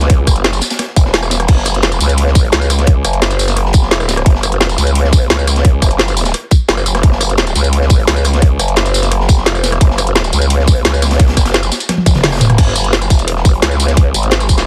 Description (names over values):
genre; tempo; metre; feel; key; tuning
dark technical drum and bass; 173 BPM; 4/4; straight; unclear; A4 = 441 Hz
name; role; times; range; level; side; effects
growl bass; bass; 0.0-14.7 s; E1 to C#2; -16 LUFS; equal; chorus, overdrive, sidechain pumping
crunchy breakbeat drum kit; drums; 0.0-14.7 s; hi-hat, snare drum; -27 LUFS; equal; none
drum and bass drum kit; drums; 0.0-14.6 s; crash cymbal, hi-hat, rim click, snare drum, tambourine, toms; -17 LUFS; equal; none
electronic kick drum; drums; 0.1-14.6 s; none; -12 LUFS; equal; none
room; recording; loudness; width
little or no reverb; dense, heavily limited modern master; -12 LUFS; mono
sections
0.0-12.6 A section; 12.6-14.7 A section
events
drop 0.0-12.6, 12.6-14.7; drum fill 11.9-12.6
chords
none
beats
| 0.10 0.45 0.79 1.14 | 1.49 1.83 2.18 2.53 | 2.87 3.22 3.57 3.91 | 4.26 4.61 4.95 5.30 | 5.65 5.99 6.34 6.69 | 7.03 7.38 7.73 8.07 | 8.42 8.77 9.12 9.46 | 9.81 10.16 10.50 10.85 | 11.20 11.54 11.89 12.24 | 12.58 12.93 13.28 13.62 | 13.97 14.32